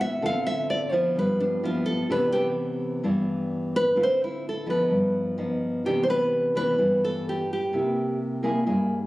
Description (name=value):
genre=bossa nova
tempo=128 BPM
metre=4/4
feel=straight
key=C major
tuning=A4 = 439 Hz
part: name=nylon-string guitar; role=melody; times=0.0-8.2 s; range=D4 to F5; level=-24 LUFS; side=equal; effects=none
part: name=nylon-string guitar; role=accompaniment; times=0.0-9.1 s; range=G2 to A4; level=-26 LUFS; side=equal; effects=none
room=light reverb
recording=recorded on a phone in the room, club reverb, compression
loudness=-22 LUFS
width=side -17 dB against mid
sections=0.0-5.8 A section; 5.8-9.1 B section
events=nylon-string guitar solo 0.0-5.8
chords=0.2 Dm7; 1.2 G6; 2.1 Cmaj9; 4.0 Dm7; 4.9 Gaug7; 5.8 Cmaj9; 7.7 C7b13